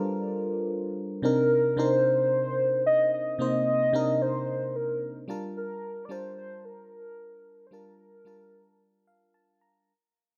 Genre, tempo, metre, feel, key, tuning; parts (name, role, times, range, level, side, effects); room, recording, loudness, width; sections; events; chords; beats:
amapiano; 111 BPM; 4/4; swing 55% on 16ths; A4 = 440 Hz
FM electric piano; accompaniment; 0.0-9.9 s; C3 to Bb5; -32 LUFS; equal; chorus
warm velvety synth lead; melody; 1.2-9.3 s; Bb4 to Eb5; -28 LUFS; equal; chorus, delay
light reverb; -26 LUFS; mono
0.0-9.9 A section
fade-out 0.0-9.9; FM electric piano fill 8.8-9.9
0.0 Gm9; 1.2 Cm9; 5.3 Gm9
0.15 0.69 | 1.24 1.77 2.32 2.86 | 3.40 3.94 4.48 5.02 | 5.56 6.10 6.64 7.18 | 7.72 8.26 8.80 9.34